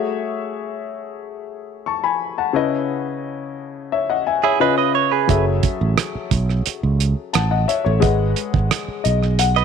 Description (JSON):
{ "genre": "lush 1970s-style soul", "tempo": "88 BPM", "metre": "4/4", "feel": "straight", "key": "F# dorian", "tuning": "A4 = 440 Hz", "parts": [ { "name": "clear concert grand piano", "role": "accompaniment", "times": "0.0-9.6 s", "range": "C#3 to C#6", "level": "-21 LUFS", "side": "left 9 dB", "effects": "none" }, { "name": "direct-recorded clean electric guitar", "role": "riff", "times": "4.4-5.4, 9.6 s", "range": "E4 to D#5", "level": "-18 LUFS", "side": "right 15 dB", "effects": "none" }, { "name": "fingered electric bass", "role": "bass", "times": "5.3-9.6 s", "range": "F#1 to C#2", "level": "-18 LUFS", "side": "right 2 dB", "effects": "none" }, { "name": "cloth-damped thuddy drum kit", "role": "drums", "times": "5.3-9.6 s", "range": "hi-hat, kick drum, rim click", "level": "-21 LUFS", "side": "right 7 dB", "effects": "none" } ], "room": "light reverb, studio reverb", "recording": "1960s-style stereo with parts hard left and right", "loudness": "-17 LUFS", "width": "side -7 dB against mid", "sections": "0.0-9.6 A section", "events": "grand piano fill 8.7-9.6", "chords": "0.0 F#m7/A; 2.6 C#m7; 4.6 C#7; 5.3 F#m7; 8.0 G#m7" }